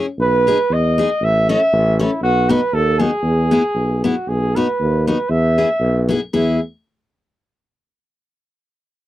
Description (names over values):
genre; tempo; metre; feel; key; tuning
alpine folk, alpine dance band; 118 BPM; 2/4; swing 54% on 8ths, rubato; E major; A4 = 437 Hz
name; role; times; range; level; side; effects
picked steel-string acoustic guitar; accompaniment; 0.0-6.6 s; B3 to A4; -18 LUFS; left 3 dB; none
mellow flugelhorn; melody; 0.2-6.6 s; E4 to E5; -18 LUFS; right 1 dB; none
warm tuba; bass; 0.2-6.6 s; A1 to E2; -18 LUFS; equal; none
room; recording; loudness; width
little or no reverb; dry, close 1970s-style studio recording; -14 LUFS; side -14 dB against mid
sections
0.0-4.3 A section; 4.3-6.3 B section; 6.3-7.3 C section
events
none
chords
0.2 G#m/B; 1.2 A; 2.2 B; 3.2 E; 4.3 B; 5.3 E